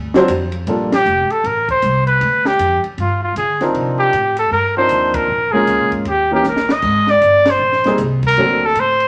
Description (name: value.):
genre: jazz, small-group swing and bop.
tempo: 156 BPM.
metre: 4/4.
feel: swing 64% on 8ths.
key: G minor.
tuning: A4 = 440 Hz.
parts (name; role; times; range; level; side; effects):
upright bass; bass; 0.0-9.1 s; F1 to D3; -25 LUFS; equal; none.
warm grand piano; accompaniment; 0.1-0.9, 3.6-8.6 s; E3 to C5; -20 LUFS; equal; none.
compact cocktail drum kit; drums; 0.1-9.1 s; crash cymbal, hi-hat, kick drum, ride cymbal, snare drum; -27 LUFS; equal; none.
warm trumpet; melody; 0.9-9.1 s; F4 to Eb5; -16 LUFS; equal; none.
room: wet club reverb, RT60 0.9 s.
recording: none.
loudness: -15 LUFS.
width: mono.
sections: 0.7-9.1 A section.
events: band accent 0.9, 5.1, 7.4; drum fill 6.4-6.8.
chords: 0.0 D7#9; 0.7 Gm9; 2.2 G5; 3.8 Cm11; 5.3 Bbm7; 6.1 Eb5; 6.8 Abmaj9; 8.4 D7b13.